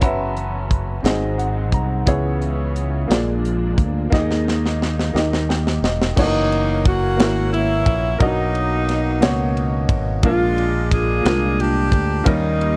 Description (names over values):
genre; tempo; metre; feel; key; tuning
slow gospel; 59 BPM (dotted quarters); 6/8; straight; unclear; A4 = 440 Hz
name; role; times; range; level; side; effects
warm upright piano; accompaniment; 0.0-12.8 s; G#2 to A#5; -25 LUFS; equal; none
dark studio string section; sustained chords; 0.0-6.2 s; D#3 to D#4; -34 LUFS; equal; none
modern bright fingered electric bass; bass; 0.0-12.8 s; E1 to D#2; -24 LUFS; equal; none
tight funk drum kit; drums; 0.0-12.8 s; crash cymbal, hi-hat, kick drum, ride cymbal, snare drum; -22 LUFS; equal; none
bright saxophone section; melody; 6.2-12.8 s; F#3 to G#4; -23 LUFS; equal; none
room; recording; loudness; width
light reverb; none; -19 LUFS; mono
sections
0.0-6.2 A section; 6.2-12.8 B section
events
upright piano fill 1.1-2.1, 5.1-6.2; drum fill 4.1-6.2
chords
0.0 F#7sus4; 1.1 G#7; 2.1 C#m7; 3.1 A#7; 4.1 D#sus4; 5.1 D#; 6.2 F#7; 8.2 Bmaj7; 10.2 A#7; 12.3 D#7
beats
| 0.03 1.05 | 2.08 3.10 | 4.12 5.14 | 6.16 7.18 | 8.20 9.22 | 10.23 11.25 | 12.26